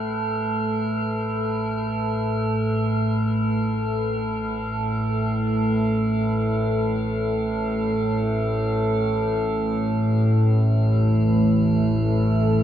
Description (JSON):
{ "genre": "dark ambient drone", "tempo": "free time", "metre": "none", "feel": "none", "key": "unclear", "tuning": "A4 = 439 Hz", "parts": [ { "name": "analog drone", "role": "drone", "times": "0.0-12.6 s", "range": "A1 to A2", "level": "-24 LUFS", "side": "equal", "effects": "chorus" }, { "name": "metallic inharmonic drone", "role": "texture", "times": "0.0-12.6 s", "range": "A3 to A4", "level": "-24 LUFS", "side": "equal", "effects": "chorus, built-in reverb" }, { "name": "sweeping resonant pad", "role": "sustained chords", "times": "9.5-12.6 s", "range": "A2 to A3", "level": "-20 LUFS", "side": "right 1 dB", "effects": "chorus" } ], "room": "wet huge ambient reverb, RT60 8.1 s", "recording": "small room ambience", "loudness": "-20 LUFS", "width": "side -10 dB against mid", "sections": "0.0-12.6 A section", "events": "fade-in on synth drone 0.0-12.6", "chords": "0.0 A5" }